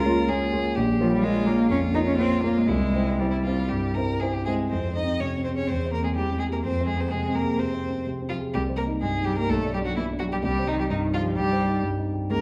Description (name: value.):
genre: quick classical-period movement for piano trio.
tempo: 127 BPM.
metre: 4/4.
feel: rubato.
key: unclear.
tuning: A4 = 439 Hz.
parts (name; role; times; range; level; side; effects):
clear violin; melody; 0.0-12.4 s; C4 to Eb5; -32 LUFS; equal; none.
clear cello; second line; 0.0-12.4 s; Eb3 to F4; -30 LUFS; equal; none.
dark concert grand piano; accompaniment; 0.0-12.4 s; Bb1 to D5; -27 LUFS; equal; none.
room: wet recital hall reverb, RT60 1.4 s.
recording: dark, warm production.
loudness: -25 LUFS.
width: mono.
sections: 0.0-4.7 A section; 4.7-12.4 B section.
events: none.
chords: 0.0 Bbm/Db; 0.8 Bbm; 2.7 C; 4.7 Fm; 5.7 C/E; 6.6 Fm; 8.5 Cm; 9.5 G/B; 10.4 Cm.